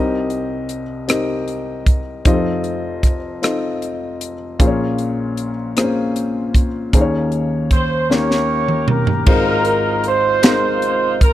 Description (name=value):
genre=slow gospel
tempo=51 BPM (dotted quarters)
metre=6/8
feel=straight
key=Ab major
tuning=A4 = 439 Hz
part: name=warm upright piano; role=accompaniment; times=0.0-11.3 s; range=F1 to Eb5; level=-19 LUFS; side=left 2 dB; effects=none
part: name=crisp fusion drum kit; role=drums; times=0.3-11.3 s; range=crash cymbal, hi-hat, kick drum, rim click, snare drum, toms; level=-16 LUFS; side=equal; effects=none
part: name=mellow horn section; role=melody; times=7.7-11.3 s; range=Eb4 to Db5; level=-17 LUFS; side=right 2 dB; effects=none
part: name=group handclap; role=percussion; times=10.4-10.8 s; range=none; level=-24 LUFS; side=right 9 dB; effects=none
room=studio ambience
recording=dry, close 1970s-style studio recording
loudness=-15 LUFS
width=side -13 dB against mid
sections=0.0-9.3 A section; 9.3-11.3 B section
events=drum fill 8.1-9.3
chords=0.0 Cm7; 2.3 F7; 4.6 Bbm7; 6.9 Eb7sus4; 8.1 Eb7; 9.3 Ab6